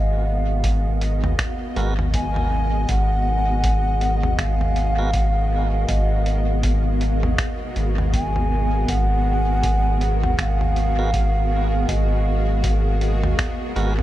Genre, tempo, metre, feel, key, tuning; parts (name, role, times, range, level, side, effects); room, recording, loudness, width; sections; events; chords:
ambient dub; 80 BPM; 4/4; swing 60% on 16ths; G# dorian; A4 = 439 Hz
mellow hollow wooden flute; melody; 0.0-12.6 s; D#5 to G#5; -26 LUFS; right 1 dB; dub echo
granular cloud pad; sustained chords; 0.0-14.0 s; B3 to G#5; -28 LUFS; equal; built-in reverb
round analog bass; bass; 0.0-14.0 s; G#1; -21 LUFS; equal
electronic kick drum; drums; 0.6-13.6 s; -26 LUFS; equal; small room ambience
lo-fi sampler-style drum kit; drums; 0.6-14.0 s; finger snaps, hi-hat, toms; -28 LUFS; equal; small room ambience, dub echo
tonewheel organ; stabs; 1.8-5.1, 11.0-13.9 s; G#3 to A#4; -34 LUFS; right 3 dB; overdrive, dub echo
little or no reverb; -18 LUFS; side -14 dB against mid
0.0-14.0 A section
0.0 G#m9